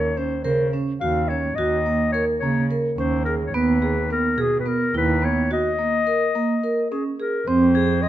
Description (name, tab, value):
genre	contemporary instrumental, chamber music in an uneven meter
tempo	214 BPM (eighths)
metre	7/8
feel	straight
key	unclear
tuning	A4 = 440 Hz
part	mellow clarinet	melody	0.0-8.1 s	G#4 to F5	-24 LUFS	left 4 dB	none
part	vibraphone with medium mallets	arpeggios	0.0-8.1 s	Bb3 to Bb4	-22 LUFS	right 2 dB	none
part	muted cello	bass	0.0-8.1 s	Eb2 to Db3	-24 LUFS	right 2 dB	none
part	crotales	texture	7.7-8.1 s	Ab6	-27 LUFS	left 8 dB	none
room	moderate recital hall reverb, RT60 1.7 s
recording	close, detailed microphones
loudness	-19 LUFS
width	side -12 dB against mid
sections	0.0-7.5 A section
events	none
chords	0.0 Gb/Eb (rootless); 3.5 Emaj7/D# (rootless); 5.5 Eb5; 7.5 Fm